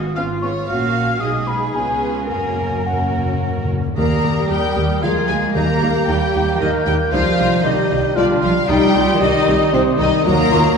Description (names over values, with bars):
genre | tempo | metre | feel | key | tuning
quick classical-period movement for symphony orchestra | 114 BPM | 3/4 | straight | F# major, Eb major from 4.0 s | A4 = 438 Hz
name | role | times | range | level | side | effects
rich chamber cello section | bass | 0.0-10.8 s | C3 to A#4 | -22 LUFS | right 3 dB | none
rich chamber double bass section | bass | 0.0-10.6 s | G#1 to F#2 | -23 LUFS | right 2 dB | none
rich chamber violin section | second line | 0.1-10.8 s | C4 to E#5 | -24 LUFS | left 3 dB | none
rich symphonic violin section | melody | 0.2-10.8 s | E#4 to Bb5 | -24 LUFS | left 3 dB | none
mellow hollow silver concert flute | second line | 0.2-10.8 s | F#5 to Ab6 | -25 LUFS | left 1 dB | none
rich symphonic viola section | accompaniment | 0.2-10.6 s | Gb3 to G4 | -25 LUFS | equal | none
timpani | percussion | 2.3-6.3 s | F#2 to Eb3 | -24 LUFS | left 1 dB | none
dark clarinet | second line | 4.0-10.6 s | Eb4 to C5 | -22 LUFS | right 1 dB | none
mellow bassoon | accompaniment | 4.0-10.8 s | Gb3 to Bb3 | -24 LUFS | left 1 dB | none
dark French horn section | sustained chords | 4.0-10.4 s | Gb3 to Bb4 | -24 LUFS | left 4 dB | none
room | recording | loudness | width
wet scoring stage reverb, RT60 1.9 s | heard from further back in the room | -15 LUFS | side -5 dB against mid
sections
0.0-4.0 A section; 4.0-10.8 B section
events
timpani fill 2.3-4.0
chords
0.0 C#7/G#; 0.7 F#/A#; 1.2 G#m7/B; 1.8 C#7; 2.3 F#; 4.0 Eb; 5.0 Bb7; 5.6 Eb; 7.1 Cm; 8.2 G7; 8.7 Cm; 10.3 Ebm